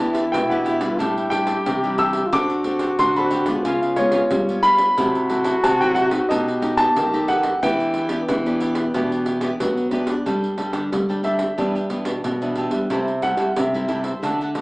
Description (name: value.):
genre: samba and choro.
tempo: 91 BPM.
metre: 4/4.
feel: straight.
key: E minor, G major from 10.3 s.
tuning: A4 = 440 Hz.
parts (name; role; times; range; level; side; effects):
warm grand piano; melody; 0.0-14.5 s; C#5 to E6; -21 LUFS; equal; none.
mellow trombone; second line; 0.0-10.3 s; B3 to G4; -24 LUFS; equal; none.
cavaquinho; accompaniment; 0.0-14.6 s; D4 to G5; -29 LUFS; right 1 dB; none.
nylon-string guitar; accompaniment; 0.0-14.6 s; F#2 to A4; -27 LUFS; left 1 dB; none.
nylon-string guitar; bass; 0.0-14.6 s; A2 to G3; -24 LUFS; equal; none.
pandeiro; percussion; 0.1-14.6 s; none; -28 LUFS; right 1 dB; none.
room: wet studio ambience, RT60 0.5 s.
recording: heard from further back in the room, small speaker sound.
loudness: -18 LUFS.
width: side -23 dB against mid.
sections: 0.0-10.3 A section; 10.3-14.6 B section.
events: grand piano solo 10.3-14.6.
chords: 0.0 Em7; 1.0 A7sus4; 2.3 D7sus4; 3.7 C#7; 5.0 F#m7b5/C; 6.3 B7b13; 7.6 Em7; 10.3 Gsus2; 11.6 Em7/G; 12.9 C6.